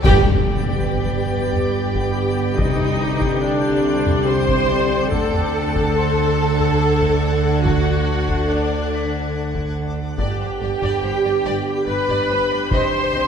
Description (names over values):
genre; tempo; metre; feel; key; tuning
cinematic, suspense film score; 71 BPM; 3/4; straight; unclear; A4 = 443 Hz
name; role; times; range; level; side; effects
warm symphonic violin section; melody; 0.0-13.2 s; C5 to F#5; -34 LUFS; left 4 dB; none
rich symphonic violin section; second line; 0.0-13.3 s; D5 to C6; -29 LUFS; left 1 dB; none
dark trombone section; sustained chords; 0.0-13.3 s; D3 to C4; -29 LUFS; right 3 dB; none
mellow French horn section; sustained chords; 0.0-13.3 s; B3 to A4; -26 LUFS; left 5 dB; none
twinkling granular texture; sustained chords; 0.0-13.3 s; C4 to D6; -31 LUFS; left 1 dB; built-in reverb
clear symphonic cello section; bass; 0.0-13.2 s; G2 to D3; -25 LUFS; right 4 dB; none
clear symphonic double bass section; bass; 0.0-13.2 s; G1 to D2; -25 LUFS; right 2 dB; none
taiko ensemble; drums; 0.0-13.3 s; none; -25 LUFS; left 1 dB; none
clash cymbals and concert bass drum; percussion; 0.0-1.7 s; none; -26 LUFS; equal; none
timpani; percussion; 0.0-3.8, 12.7-13.3 s; G2 to C3; -29 LUFS; left 4 dB; none
swell and impact; sound effects; 0.0-2.6 s; none; -26 LUFS; left 1 dB; none
large celesta; texture; 0.0-13.3 s; G4 to B6; -33 LUFS; left 6 dB; none
rich symphonic viola section; accompaniment; 0.1-13.3 s; D4 to C5; -22 LUFS; right 1 dB; none
rich studio violin section; texture; 0.1-13.3 s; D6 to B6; -37 LUFS; left 2 dB; none
room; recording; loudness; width
wet scoring stage reverb, RT60 1.9 s; minimal, uncompressed stereo recording; -17 LUFS; side -7 dB against mid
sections
0.0-13.3 A section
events
band accent 0.0-0.9; impact 0.0-2.6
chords
0.0 G; 2.6 Cmadd9; 5.1 D; 10.2 G; 12.7 Cmadd9